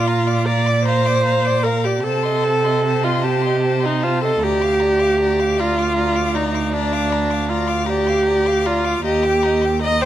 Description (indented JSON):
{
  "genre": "classical, slow romantic movement for string quartet",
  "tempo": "51 BPM (dotted quarters)",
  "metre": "12/8",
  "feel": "rubato",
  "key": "Bb major",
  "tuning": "A4 = 438 Hz",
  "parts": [
    { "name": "clear violin", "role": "melody", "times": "0.0-10.1 s", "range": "A5 to D6", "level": "-28 LUFS", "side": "left 13 dB", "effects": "none" },
    { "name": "rich violin", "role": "second line", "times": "0.0-10.1 s", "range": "C5 to G5", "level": "-27 LUFS", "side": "left 6 dB", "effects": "none" },
    { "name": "rich viola", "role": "accompaniment", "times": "0.0-10.1 s", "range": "D4 to Eb5", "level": "-18 LUFS", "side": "right 1 dB", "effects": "none" },
    { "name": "clear cello", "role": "bass", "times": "0.0-10.1 s", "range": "D2 to C3", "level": "-21 LUFS", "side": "right 4 dB", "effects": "none" }
  ],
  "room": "light reverb",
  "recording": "close, detailed microphones",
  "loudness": "-16 LUFS",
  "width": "side -12 dB against mid",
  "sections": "0.0-10.1 A section",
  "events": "none",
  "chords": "0.0 Bb; 2.0 Adim/C; 4.4 Bb/D; 9.0 Ebmaj7"
}